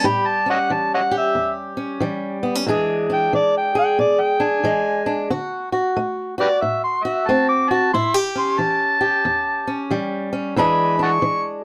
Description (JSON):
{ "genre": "acoustic country blues, solo or duo", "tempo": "91 BPM", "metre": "4/4", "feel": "swing 63% on 8ths", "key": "A mixolydian", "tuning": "A4 = 441 Hz", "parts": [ { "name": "overdriven harmonica", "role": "melody", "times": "0.0-11.4 s", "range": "G4 to D6", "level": "-21 LUFS", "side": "equal", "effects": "none" }, { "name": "fingerpicked swing-style acoustic guitar", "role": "accompaniment", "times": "0.0-11.6 s", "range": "E2 to G#4", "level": "-23 LUFS", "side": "equal", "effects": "none" } ], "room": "light reverb", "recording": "none", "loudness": "-20 LUFS", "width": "mono", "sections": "0.0-11.6 A section", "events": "harmonica solo 0.0-11.6", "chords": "0.0 A7; 2.7 E7; 5.3 D7; 7.9 A7; 10.6 E7", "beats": "| 0.05 0.71 1.37 2.02 | 2.68 3.34 4.00 4.65 | 5.31 5.97 6.62 7.28 | 7.94 8.59 9.25 9.91 | 10.56 11.22" }